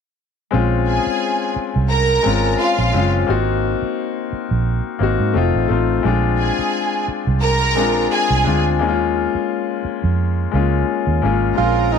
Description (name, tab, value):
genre	soul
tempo	87 BPM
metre	4/4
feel	swing 54% on 16ths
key	Bb minor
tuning	A4 = 440 Hz
part	clear concert grand piano	accompaniment	0.5-12.0 s	Ab3 to Gb4	-19 LUFS	left 9 dB	none
part	vintage muted fingered electric bass	bass	0.5-12.0 s	F1 to Ab2	-19 LUFS	right 3 dB	none
part	bright studio string section	second line	0.9-12.0 s	F4 to Bb5	-20 LUFS	right 2 dB	none
part	breathy tenor saxophone	melody	11.6-12.0 s	Eb4 to F4	-17 LUFS	right 15 dB	none
room	light reverb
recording	1960s-style stereo with parts hard left and right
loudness	-16 LUFS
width	side -6 dB against mid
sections	0.5-11.6 A section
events	none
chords	0.5 Bbm9; 3.3 Ab7; 5.4 F7; 6.0 Bb7; 8.8 Eb9sus4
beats	| 0.52 1.21 1.90 2.59 | 3.28 3.98 4.67 5.36 | 6.05 6.74 7.43 8.12 | 8.81 9.50 10.19 10.88 | 11.57